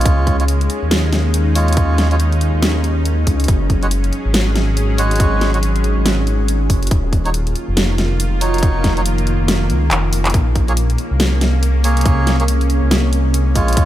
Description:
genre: deep dubstep.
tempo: 140 BPM.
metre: 4/4.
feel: swing 60% on 16ths, half-time.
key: Bb minor.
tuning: A4 = 440 Hz.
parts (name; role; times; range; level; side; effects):
bowed-like drone; sustained chords; 0.0-13.9 s; Eb3 to Ab4; -22 LUFS; equal; built-in reverb.
melodica; stabs; 0.0-13.9 s; Gb3 to Db5; -24 LUFS; right 2 dB; dub echo.
dark detuned saw bass; bass; 0.0-13.9 s; Eb1 to Eb2; -16 LUFS; equal; none.
dubstep drum kit; drums; 0.0-13.9 s; handclaps, hi-hat, snare drum; -20 LUFS; equal; studio reverb.
electronic kick drum; drums; 0.1-13.9 s; none; -17 LUFS; equal; studio reverb.
room: digital ambience.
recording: none.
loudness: -13 LUFS.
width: side -13 dB against mid.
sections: 0.0-13.9 A section.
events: kick drops out 9.9-10.3; drum fill 9.9-10.3.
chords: 0.1 Db; 3.5 Gbsus2; 6.9 Ebm7; 10.3 Bbm7.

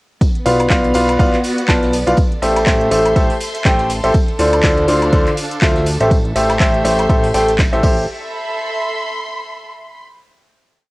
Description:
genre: piano house.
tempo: 122 BPM.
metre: 4/4.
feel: swing 57% on 16ths.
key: A minor.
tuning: A4 = 440 Hz.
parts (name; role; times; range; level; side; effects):
electronic kick drum; drums; 0.2-7.9 s; none; -15 LUFS; equal; overdrive, cassette tape.
gated 80s drum kit; drums; 0.2-7.8 s; hi-hat, snare drum, tambourine; -35 LUFS; equal; none.
house drum kit; drums; 0.2-7.9 s; crash cymbal, handclaps, hi-hat, shaker, woodblock; -23 LUFS; equal; overdrive, cassette tape.
tambourine; percussion; 0.2-8.1 s; none; -32 LUFS; right 1 dB; none.
rich studio string section; texture; 0.2-10.0 s; B3 to C6; -25 LUFS; right 1 dB; sidechain pumping, cassette tape.
clear grand piano; riff; 0.5-8.0 s; D3 to A5; -15 LUFS; equal; sidechain pumping, cassette tape, tape echo.
fat analog bass; bass; 0.5-8.1 s; A1 to D2; -21 LUFS; equal; sidechain pumping.
room: light reverb.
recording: home recording on cassette.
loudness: -12 LUFS.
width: side -21 dB against mid.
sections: 0.2-8.1 drop; 8.1-10.0 final chord.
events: drop 0.2-8.1.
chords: 0.2 Bdim; 2.2 Am7; 4.1 Dm7; 5.9 Am7; 8.1 Am.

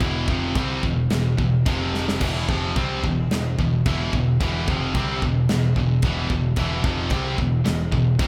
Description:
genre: heavy metal.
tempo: 110 BPM.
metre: 4/4.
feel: straight.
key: E minor.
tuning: A4 = 440 Hz.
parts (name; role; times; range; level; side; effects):
scooped high-gain guitar; riff; 0.0-8.3 s; E2 to C4; -27 LUFS; equal; distortion.
tight distorted guitar; riff; 0.0-8.3 s; E2 to C4; -27 LUFS; equal; distortion.
growling picked electric bass; bass; 0.0-8.3 s; E1 to C2; -30 LUFS; equal; overdrive.
big rock drum kit; drums; 0.0-8.3 s; china cymbal, crash cymbal, kick drum, snare drum; -28 LUFS; equal; none.
room: moderate large studio reverb, RT60 1.5 s.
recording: band playing live in one room.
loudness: -22 LUFS.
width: mono.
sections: 0.0-8.3 A section.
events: drum fill 1.9.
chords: 0.0 Em; 1.7 F5; 2.2 Em.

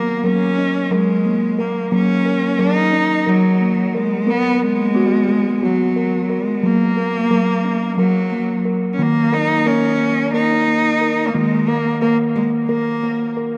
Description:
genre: world meditative, meditative tuned percussion.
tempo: 178 BPM (eighths).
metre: 7/8.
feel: straight.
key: unclear.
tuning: A4 = 440 Hz.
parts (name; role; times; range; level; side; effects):
clear cello; melody; 0.0-13.3 s; F#3 to D#4; -21 LUFS; equal; dub echo.
steel tongue drum; arpeggios; 0.0-13.6 s; D#3 to A#4; -20 LUFS; equal; none.
room: wet echo chamber reverb, RT60 1.8 s.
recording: echo-heavy mix.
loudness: -17 LUFS.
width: mono.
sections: 0.0-9.0 A section; 9.0-13.6 B section.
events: none.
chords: 0.0 F#; 4.3 B5; 6.6 F#; 9.0 D#5.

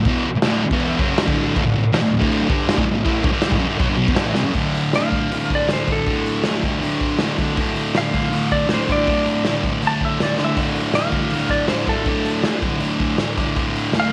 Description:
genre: garage rock duo or trio.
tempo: 160 BPM.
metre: 4/4.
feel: straight.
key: D major.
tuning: A4 = 440 Hz.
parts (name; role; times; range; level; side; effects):
thick fuzz guitar; riff; 0.0-14.1 s; D2 to A3; -22 LUFS; equal; distortion.
raw garage drum kit; drums; 0.1-14.0 s; crash cymbal, hi-hat, kick drum, snare drum; -25 LUFS; equal; none.
clean lap steel guitar; melody; 5.0-14.1 s; A4 to A5; -25 LUFS; equal; none.
room: light reverb, small room ambience.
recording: none.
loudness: -20 LUFS.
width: mono.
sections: 0.0-4.6 A section; 4.6-14.1 B section.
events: drum fill 4.4, 10.4.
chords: 0.0 D; 4.6 D5.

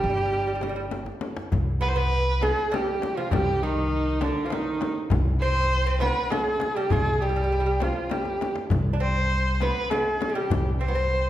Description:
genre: Persian modal ensemble.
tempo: 100 BPM.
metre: 3/4.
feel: straight.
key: C avaz esfahan.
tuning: A4 = 440 Hz.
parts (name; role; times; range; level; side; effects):
clear kamancheh; melody; 0.0-11.3 s; D4 to C5; -26 LUFS; right 1 dB; none.
lute; second line; 0.0-11.3 s; D3 to D4; -31 LUFS; right 2 dB; none.
upright bass; bass; 0.0-11.3 s; G1 to C2; -26 LUFS; equal; none.
tombak; percussion; 0.3-10.6 s; none; -31 LUFS; left 2 dB; none.
frame drum; percussion; 0.6-10.6 s; none; -32 LUFS; left 3 dB; none.
room: wet recital hall reverb, RT60 1.3 s.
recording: heard from further back in the room.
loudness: -22 LUFS.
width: side -13 dB against mid.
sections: 0.0-1.5 A section; 1.5-11.3 B section.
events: drum fill 0.9-1.5, 8.1-8.7.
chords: none.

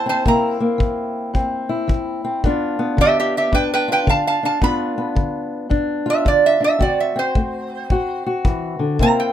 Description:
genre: acoustic country blues, solo or duo.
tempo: 110 BPM.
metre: 4/4.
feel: swing 65% on 8ths.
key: G mixolydian.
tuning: A4 = 440 Hz.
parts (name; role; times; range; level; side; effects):
lap resonator guitar; melody; 0.0-9.3 s; G4 to B5; -18 LUFS; right 3 dB; none.
fingerpicked old ladder-braced acoustic guitar; accompaniment; 0.0-9.3 s; G2 to F#4; -20 LUFS; left 2 dB; none.
kick drum; drums; 0.3-9.2 s; none; -20 LUFS; equal; none.
room: light reverb.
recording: minimal, uncompressed stereo recording.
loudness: -16 LUFS.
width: side -10 dB against mid.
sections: 0.0-9.3 A section.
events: none.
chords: 0.0 C7; 2.4 G7; 6.8 D7.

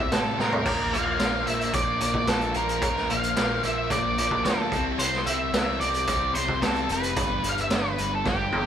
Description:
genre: classic rock.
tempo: 110 BPM.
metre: 4/4.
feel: straight.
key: unclear.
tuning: A4 = 440 Hz.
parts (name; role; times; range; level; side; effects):
octave-fuzz lead guitar; melody; 0.0-8.7 s; G4 to F5; -27 LUFS; left 1 dB; distortion.
tonewheel organ; sustained chords; 0.0-8.7 s; E3 to C5; -40 LUFS; left 1 dB; none.
sludgy distorted guitar; riff; 0.0-8.7 s; G2 to C4; -33 LUFS; left 6 dB; overdrive.
sludgy distorted guitar; riff; 0.0-8.7 s; G2 to C4; -31 LUFS; right 4 dB; overdrive.
picked electric bass; bass; 0.0-8.7 s; F1 to A2; -34 LUFS; equal; none.
raw garage drum kit; drums; 0.1-8.7 s; crash cymbal, hi-hat, kick drum, snare drum, toms; -27 LUFS; right 1 dB; none.
cowbell; percussion; 0.1-8.7 s; none; -40 LUFS; left 1 dB; none.
room: moderate stone room reverb, RT60 1.1 s.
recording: band playing live in one room.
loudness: -22 LUFS.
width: side -9 dB against mid.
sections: 0.0-8.7 A section.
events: drum fill 0.4, 8.3-8.7.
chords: 0.0 C; 0.7 Bbadd9; 4.7 C; 7.2 G.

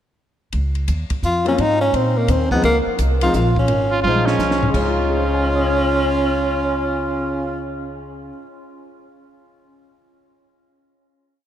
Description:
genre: jazz, small-group swing and bop.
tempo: 171 BPM.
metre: 3/4.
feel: swing 65% on 8ths.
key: Db major.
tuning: A4 = 440 Hz.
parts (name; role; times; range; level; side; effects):
upright bass; bass; 0.5-8.3 s; Ab1 to Bb2; -22 LUFS; equal; none.
compact cocktail drum kit; drums; 0.5-6.8 s; crash cymbal, cymbal swell, hi-hat, kick drum, ride cymbal, snare drum, toms; -27 LUFS; equal; none.
warm tenor saxophone; melody; 1.2-7.6 s; Bb3 to F4; -20 LUFS; equal; none.
clear concert grand piano; accompaniment; 1.4-8.6 s; Db3 to Ab6; -25 LUFS; left 2 dB; none.
clear trumpet; second line; 3.9-7.6 s; Db4 to F4; -23 LUFS; right 2 dB; none.
room: wet cathedral reverb, RT60 5.0 s.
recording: in a vast, echoing space.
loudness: -16 LUFS.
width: side -10 dB against mid.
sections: 0.5-4.7 A section; 4.7-6.8 final chord.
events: drum fill 4.0-4.7.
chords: 0.5 Db; 1.6 Abadd9; 2.6 Dbmaj7.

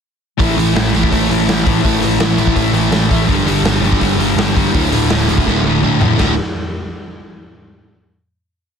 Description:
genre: punk rock.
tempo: 166 BPM.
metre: 4/4.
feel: straight.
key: unclear.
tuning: A4 = 441 Hz.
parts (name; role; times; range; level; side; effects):
distorted electric guitar; riff; 0.4-6.3 s; D2 to A3; -17 LUFS; left 14 dB; distortion.
sludgy distorted guitar; riff; 0.4-6.3 s; D2 to F#4; -17 LUFS; right 12 dB; overdrive.
overdriven picked electric bass; bass; 0.4-6.4 s; D1 to A1; -19 LUFS; equal; none.
raw garage drum kit; drums; 0.4-6.3 s; china cymbal, hi-hat, kick drum, snare drum, toms; -18 LUFS; equal; none.
room: light reverb.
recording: dense, heavily limited modern master.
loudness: -12 LUFS.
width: side -7 dB against mid.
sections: 0.4-6.2 verse; 6.2-7.6 final chord.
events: drum fill 5.5-6.2.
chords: 0.4 A5; 3.3 G5; 4.7 D5.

